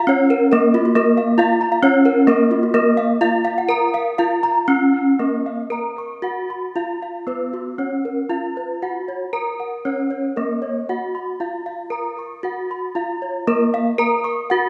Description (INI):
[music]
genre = gamelan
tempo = 116-137 BPM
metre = 4/4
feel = straight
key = Bb pelog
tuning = A4 = 442 Hz
[part]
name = gamelan-type bronze metallophone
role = melody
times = 0.0-14.7 s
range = Bb3 to Bb4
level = -21 LUFS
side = equal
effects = tape echo
[part]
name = gamelan-type bronze metallophone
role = arpeggios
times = 0.0-14.6 s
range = F4-30c to Db6-30c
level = -24 LUFS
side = equal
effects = none
[sound]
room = wet recital hall reverb, RT60 1.3 s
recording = nothing above 10.5 kHz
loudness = -19 LUFS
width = mono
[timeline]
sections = 0.0-5.2 A section; 5.2-14.7 B section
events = none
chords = none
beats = 0.07 0.51 0.95 | 1.39 1.83 2.28 2.75 | 3.21 3.69 4.18 4.68 | 5.20 5.71 6.23 6.75 | 7.26 7.78 8.30 8.82 | 9.33 9.85 10.37 10.88 | 11.40 11.92 12.44 12.95 | 13.47 13.99 14.51